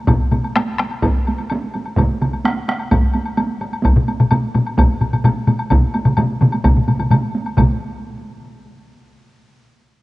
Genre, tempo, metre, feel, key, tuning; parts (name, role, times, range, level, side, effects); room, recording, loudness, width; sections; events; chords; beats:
japanese traditional, taiko drum ensemble; 129 BPM; 4/4; straight
taiko ensemble; percussion; 0.1-7.8 s; -22 LUFS; right 3 dB
taiko ensemble; percussion; 0.1-0.9, 4.0-8.0 s; -18 LUFS; left 1 dB
taiko ensemble; percussion; 0.1-7.8 s; -18 LUFS; equal
woodblock; percussion; 0.1-7.8 s; -26 LUFS; left 3 dB
solo taiko drums; percussion; 2.0-2.8, 5.7-8.0 s; -22 LUFS; right 2 dB
moderate lush hall reverb, RT60 3.0 s; home recording on cassette, nothing above 10.7 kHz; -15 LUFS; side -18 dB against mid
0.0-7.6 A section; 7.6-9.4 B section
speeding up 0.0-9.4
| 0.08 0.56 1.03 1.50 | 1.98 2.45 2.92 3.39 | 3.86 4.32 4.79 5.26 | 5.72 6.19 6.65 7.11 | 7.58